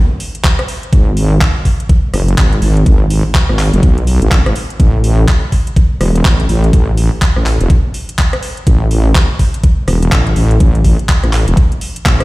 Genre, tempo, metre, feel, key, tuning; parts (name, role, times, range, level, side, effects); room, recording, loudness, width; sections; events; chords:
bass house; 124 BPM; 4/4; swing 61% on 16ths; A4 = 442 Hz
garage drum kit; drums; 0.2-12.2 s; handclaps, hi-hat, rim click; -20 LUFS; equal
electronic kick drum; drums; 0.4-12.2 s; -10 LUFS; equal
wobble bass; bass; 0.9-12.2 s; E1 to B1; -11 LUFS; equal; chorus, tube saturation, sidechain pumping
digital ambience; played on a big sound system in a bare room, stone room reverb; -10 LUFS; side -20 dB against mid
0.0-12.2 A section